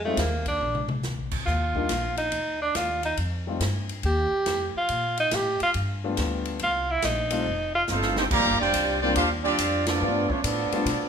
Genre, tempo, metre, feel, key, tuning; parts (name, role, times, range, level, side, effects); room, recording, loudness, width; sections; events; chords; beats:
jazz, big band swing; 140 BPM; 4/4; swing 67% on 8ths; Bb major; A4 = 441 Hz
warm tenor saxophone; melody; 0.0-7.8 s; A3 to G4; -25 LUFS; right 1 dB
upright bass; bass; 0.0-11.1 s; F1 to B2; -30 LUFS; equal
clear grand piano; accompaniment; 0.1-10.9 s; G3 to F4; -30 LUFS; left 5 dB
swinging big-band drum kit; drums; 0.2-11.0 s; crash cymbal, hi-hat, kick drum, ride cymbal, snare drum, toms; -32 LUFS; left 1 dB
clear trumpet section; melody; 7.9-11.1 s; A3 to Bb5; -24 LUFS; right 2 dB
warm trombone section; second line; 7.9-11.1 s; F3 to G4; -28 LUFS; right 2 dB
moderate large studio reverb, RT60 1.0 s; minimal, uncompressed stereo recording; -23 LUFS; side -7 dB against mid
0.0-8.3 A section; 8.3-11.1 B section
tenor saxophone solo 0.0-8.3; drum fill 0.6-1.0, 7.9-8.3; band accent 9.8
0.0 Fm7; 0.6 Bb7; 1.5 Ebmaj7sus2; 3.2 F7sus2; 4.9 Gm9; 5.7 G7; 6.6 Cm7; 7.5 F9; 8.3 Bb69; 10.0 G9
0.18 0.61 1.04 | 1.47 1.90 2.32 2.75 | 3.18 3.61 4.03 4.46 | 4.89 5.32 5.74 6.17 | 6.60 7.03 7.45 7.88 | 8.31 8.73 9.16 9.59 | 10.02 10.44 10.87